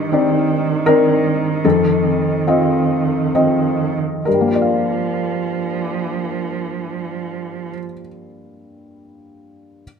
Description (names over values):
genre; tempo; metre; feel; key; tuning
neoclassical piano and strings; 64-81 BPM; 3/4; rubato; G minor; A4 = 440 Hz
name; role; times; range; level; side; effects
warm cello; second line; 0.0-7.7 s; Eb3 to F3; -21 LUFS; right 8 dB; none
felt-muted upright piano; accompaniment; 0.0-9.8 s; F2 to F5; -17 LUFS; left 3 dB; none
room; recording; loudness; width
moderate scoring stage reverb, RT60 1.7 s; close, detailed microphones; -15 LUFS; side -6 dB against mid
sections
0.0-4.3 A section; 4.3-7.0 B section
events
slowing down 0.0-4.3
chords
0.0 Cmadd9/G; 1.6 F7; 4.3 Gm7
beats
0.11 0.86 | 1.64 2.46 3.33 | 4.26 5.18 6.10